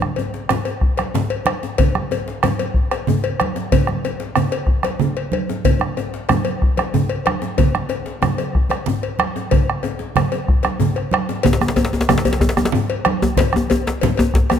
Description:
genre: west african traditional, West African drum ensemble.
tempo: 124 BPM (dotted quarters).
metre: 12/8.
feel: straight.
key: none.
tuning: none.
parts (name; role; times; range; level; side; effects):
bombo; percussion; 0.0-14.6 s; none; -20 LUFS; equal; none.
congas; percussion; 0.0-14.6 s; none; -23 LUFS; right 6 dB; none.
djembe; percussion; 0.0-14.6 s; none; -25 LUFS; left 5 dB; none.
cowbell; percussion; 0.2-14.6 s; none; -25 LUFS; left 8 dB; none.
djembe; percussion; 11.5-14.6 s; none; -18 LUFS; left 2 dB; none.
room: moderate concert hall reverb, RT60 2.3 s.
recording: close, detailed microphones.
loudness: -16 LUFS.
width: side -8 dB against mid.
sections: 0.0-11.4 A section; 11.4-14.6 B section.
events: none.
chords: none.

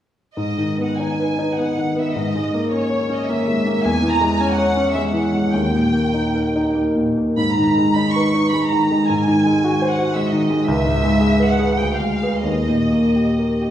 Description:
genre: classical, romantic movement for piano and orchestra.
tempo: 84-118 BPM.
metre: 3/4.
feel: rubato.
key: G# minor.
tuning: A4 = 439 Hz.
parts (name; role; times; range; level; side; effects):
clear grand piano; melody; 0.4-13.7 s; C#2 to C#5; -17 LUFS; equal; none.
rich studio violin section; melody; 0.4-13.7 s; C#5 to C#6; -24 LUFS; right 2 dB; none.
room: wet recital hall reverb, RT60 1.3 s.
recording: recorded in a church or concert hall.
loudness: -16 LUFS.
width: side -11 dB against mid.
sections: 0.4-13.7 A section.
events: none.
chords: 0.4 G#m; 2.1 A#m7b5/G#; 3.8 C#m/E; 5.5 D#; 7.4 G#m; 9.1 G#7; 10.7 C#m7; 11.8 Ddim7; 12.4 D#.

